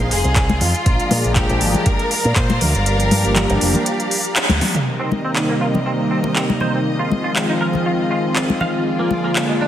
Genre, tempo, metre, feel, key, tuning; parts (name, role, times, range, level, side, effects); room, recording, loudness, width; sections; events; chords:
nu-disco, nu disco; 120 BPM; 4/4; swing 54% on 16ths; C minor; A4 = 440 Hz
clear studio string section; sustained chords; 0.0-9.7 s; C3 to C6; -26 LUFS; equal; sidechain pumping
fingered electric bass with an envelope filter; bass; 0.0-4.6 s; F1 to Bb2; -19 LUFS; equal
pop drum kit; drums; 0.0-9.5 s; handclaps, hi-hat, snare drum, toms; -21 LUFS; equal; studio reverb
clear studio violin section; melody; 0.1-4.4 s; F4 to C5; -24 LUFS; equal; tape echo
electronic kick drum; drums; 0.4-2.5 s; -18 LUFS; equal; studio reverb
congas; percussion; 0.5-9.2 s; -23 LUFS; left 3 dB
warm analog pad; accompaniment; 0.9-9.7 s; C3 to Ab4; -20 LUFS; equal; chorus, tape echo
direct-recorded clean electric guitar; riff; 5.0-9.7 s; Ab3 to F5; -25 LUFS; right 2 dB; ensemble chorus, low-pass filter, tape echo
moderate echo chamber reverb, RT60 1.7 s; heavily compressed radio sound; -15 LUFS; side -11 dB against mid
0.0-4.9 A section; 4.9-9.7 B section
kick drops out 2.9-4.9; band accent 4.4; drum fill 4.5-4.9
0.0 Fm7; 0.9 Bb7; 2.9 Gm7; 4.9 Cm7; 6.9 Fm7; 8.9 Bb7